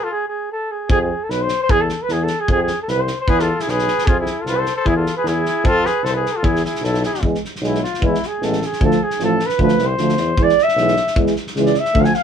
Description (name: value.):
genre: balkan folk, Balkan brass band.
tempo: 152 BPM.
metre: 2/4.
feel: swing 54% on 16ths.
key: E phrygian dominant.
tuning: A4 = 440 Hz.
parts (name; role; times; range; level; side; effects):
mellow flugelhorn; melody; 0.0-12.2 s; E4 to G#5; -19 LUFS; right 1 dB; none.
clear trumpet; second line; 0.0-0.1, 3.3-7.2 s; E4 to A4; -23 LUFS; left 4 dB; none.
warm tuba; bass; 0.9-12.1 s; A1 to F2; -22 LUFS; left 1 dB; none.
loose indie drum kit; percussion; 0.9-12.2 s; kick drum, snare drum; -22 LUFS; equal; none.
dark euphonium; accompaniment; 7.2-12.1 s; G#3 to B3; -22 LUFS; left 3 dB; none.
warm euphonium; accompaniment; 7.2-12.1 s; E3 to G#3; -22 LUFS; right 5 dB; none.
room: moderate small room reverb, RT60 0.5 s.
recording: band playing live in one room.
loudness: -16 LUFS.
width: side -8 dB against mid.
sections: 0.9-7.2 A section; 7.2-12.2 B section.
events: stop 0.1-0.9; flugelhorn solo 7.2-12.2.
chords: 0.1 N.C.; 0.9 Fdim; 1.7 Eadd11; 2.5 F5; 3.3 E; 4.1 F5; 4.9 E; 5.7 F5; 6.4 E5; 7.2 E; 8.8 Dm; 10.4 E.